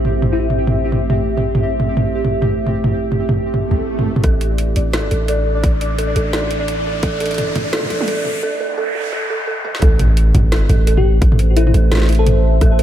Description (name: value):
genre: half-time drum and bass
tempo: 172 BPM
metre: 4/4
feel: swing 58% on 16ths, half-time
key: A minor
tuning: A4 = 440 Hz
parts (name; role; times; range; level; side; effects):
- deep dark ambient pad; sustained chords; 0.0-12.8 s; A3 to E5; -25 LUFS; equal; chorus, built-in reverb, sidechain pumping
- long sustained 808-style bass; bass; 0.0-12.8 s; A1; -17 LUFS; equal; none
- drum and bass drum kit; drums; 0.0-12.8 s; hi-hat, snare drum, toms; -20 LUFS; right 1 dB; none
- pulsing gated texture; texture; 0.0-8.4 s; C4 to D5; -23 LUFS; right 2 dB; chorus, built-in reverb
- bell-like FM electric piano; melody; 0.3-0.5, 11.0-12.5 s; E4 to A4; -22 LUFS; left 6 dB; chorus, phaser, ping-pong delay
- swell, riser, noise sweep and sub drop; sound effects; 3.6-11.2 s; none; -25 LUFS; equal; none
- dark detuned synth bell; arpeggios; 4.2-12.8 s; A4; -24 LUFS; right 2 dB; chorus, low-pass filter, ping-pong delay
- electronic kick drum; drums; 4.2-7.1, 9.8-12.7 s; none; -14 LUFS; equal; none
room: light reverb, digital ambience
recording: high-pass filter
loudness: -14 LUFS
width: side -11 dB against mid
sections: 0.0-4.2 A section; 4.2-9.8 B section; 9.8-12.8 C section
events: swell 3.6-4.2; build-up 4.2-9.8; riser 4.2-8.4; filter sweep on synth bell 4.2-9.8; filter sweep 4.2-9.8; break 8.4-9.8; noise sweep 8.4-9.8; drum fill 9.6; drop 9.8-12.8; impact 9.8-11.2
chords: 0.0 Am